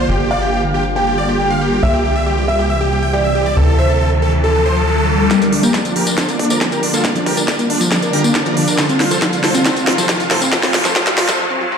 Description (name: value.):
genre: uplifting trance.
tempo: 138 BPM.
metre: 4/4.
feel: straight.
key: G dorian.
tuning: A4 = 445 Hz.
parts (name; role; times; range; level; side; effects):
big supersaw lead; melody; 0.0-11.4 s; D4 to G5; -20 LUFS; equal; sidechain pumping, low-pass filter, digital delay.
felt-muted upright piano; second line; 0.0-5.2 s; A4 to G5; -20 LUFS; right 1 dB; digital delay.
tight sequencer bass; bass; 0.0-5.3 s; G1 to D2; -18 LUFS; equal; sidechain pumping.
riser; sound effects; 3.7-11.8 s; none; -22 LUFS; left 2 dB; none.
wide unison pluck; arpeggios; 5.3-11.8 s; F3 to F5; -19 LUFS; equal; sidechain pumping, digital delay.
electronic kick drum; drums; 5.3-11.0 s; none; -26 LUFS; equal; none.
techno drum kit; drums; 5.3-11.4 s; hi-hat, snare drum, tambourine; -17 LUFS; equal; none.
room: moderate digital room reverb, RT60 1.2 s.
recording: played on a big sound system in a bare room, large studio reverb, high-pass filter.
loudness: -13 LUFS.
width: side -6 dB against mid.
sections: 0.0-5.3 A section; 5.3-11.8 B section.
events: riser 3.7-5.3, 5.3-11.8; build-up 5.3-11.8; drum fill 5.3-11.4; filter sweep on supersaw synth 5.3-11.8; filter sweep 5.3-11.8; break 11.4-11.8.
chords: 0.1 Gm7; 1.8 C; 3.6 Dm; 5.3 Gm7; 8.8 F.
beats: | 0.09 0.53 0.96 1.40 | 1.83 2.26 2.70 3.13 | 3.57 4.00 4.44 4.87 | 5.31 5.74 6.18 6.61 | 7.05 7.48 7.92 8.35 | 8.79 9.22 9.65 10.09 | 10.53 10.96 11.39.